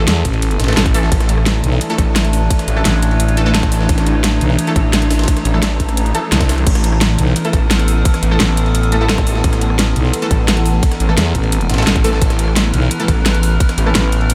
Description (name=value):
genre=dark technical drum and bass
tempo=173 BPM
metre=4/4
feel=straight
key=unclear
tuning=A4 = 440 Hz
part: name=metallic inharmonic drone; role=sustained chords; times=0.0-14.3 s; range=E3 to B4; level=-22 LUFS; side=equal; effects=chorus, built-in reverb, phaser, sidechain pumping
part: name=orchestra-hit-like synth stab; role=stabs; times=0.0-13.9 s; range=E3 to A4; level=-26 LUFS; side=equal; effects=built-in reverb, phaser, tape echo
part: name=detuned saw bass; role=bass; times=0.0-13.9 s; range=A1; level=-18 LUFS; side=equal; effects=chorus
part: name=growling FM bass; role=bass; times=0.1-14.3 s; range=A1 to E2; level=-18 LUFS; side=equal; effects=none
part: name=breakbeat sampler-style drum kit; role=drums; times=0.1-14.3 s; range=ride cymbal, snare drum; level=-30 LUFS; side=equal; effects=none
part: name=dubstep drum kit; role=drums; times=0.1-14.3 s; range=crash cymbal, hi-hat, rim click, snare drum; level=-22 LUFS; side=equal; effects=none
part: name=electronic kick drum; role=drums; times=0.2-13.7 s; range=none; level=-18 LUFS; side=equal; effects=none
part: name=zap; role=sound effects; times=9.2-9.3 s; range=none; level=-35 LUFS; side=equal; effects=none
room=light reverb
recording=none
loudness=-15 LUFS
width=mono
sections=0.0-14.3 A section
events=none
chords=0.0 A5